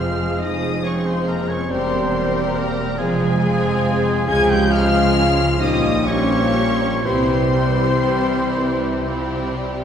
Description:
classical; 39-47 BPM (dotted quarters); 6/8; rubato; F minor; A4 = 436 Hz
rich symphonic violin section; melody; 0.0-9.5 s; Ab5 to Ab6; -27 LUFS; left 3 dB
flute section; second line; 0.0-9.5 s; Ab4 to Ab5; -27 LUFS; left 3 dB
warm clarinet; second line; 0.0-9.7 s; G4 to Bb4; -30 LUFS; right 2 dB
warm oboe; second line; 0.0-9.6 s; Ab4 to Ab5; -28 LUFS; right 1 dB
warm symphonic violin section; second line; 0.0-9.8 s; E4 to Bb4; -29 LUFS; left 2 dB
clear symphonic viola section; accompaniment; 0.0-9.8 s; F3 to Db4; -26 LUFS; equal
dark bassoon; accompaniment; 0.0-9.8 s; E3 to G3; -28 LUFS; right 1 dB
mellow French horn section; sustained chords; 0.0-9.5 s; Ab3 to Ab4; -24 LUFS; left 3 dB
warm trombone section; sustained chords; 0.0-9.7 s; E3 to Bb3; -27 LUFS; right 2 dB
clear symphonic double bass section; bass; 0.0-9.8 s; E1 to Db2; -24 LUFS; right 3 dB
rich symphonic cello section; bass; 0.0-9.8 s; E2 to Db3; -26 LUFS; right 1 dB
wet recital hall reverb, RT60 1.8 s; heard from further back in the room; -16 LUFS; side -8 dB against mid
0.0-9.8 A section
0.0 Fm; 1.7 C7/E; 3.0 Fm; 4.3 Db; 5.6 Gm7b5/Bb; 7.0 C
0.40 | 1.70 2.98 | 4.28 5.61 | 7.04 8.57

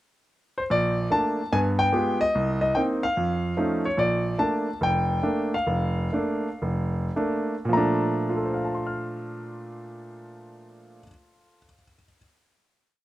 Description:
solo jazz; 103-148 BPM; 4/4; swing 66% on 8ths; Bb major; A4 = 441 Hz
clear grand piano; solo; 0.6-12.2 s; F1 to F6; -23 LUFS; equal; slapback echo
light reverb; recorded outdoors, with no room sound; -22 LUFS; side -15 dB against mid
0.0-0.7 pickup bar; 0.7-7.7 A section; 7.7-12.4 final chord
slowing down 4.0-7.7
0.0 N.C.; 0.7 Bbmaj7; 1.5 G7b9; 2.3 Cm7; 3.2 Faug7; 4.0 Bbmaj7
0.30 | 0.71 1.11 1.52 1.93 | 2.34 2.75 3.15 3.56 | 3.97 4.38 4.80 5.23 | 5.67 6.14 6.62 7.15 | 7.71 8.29 8.87 9.45 | 10.04 10.62 11.20 11.78

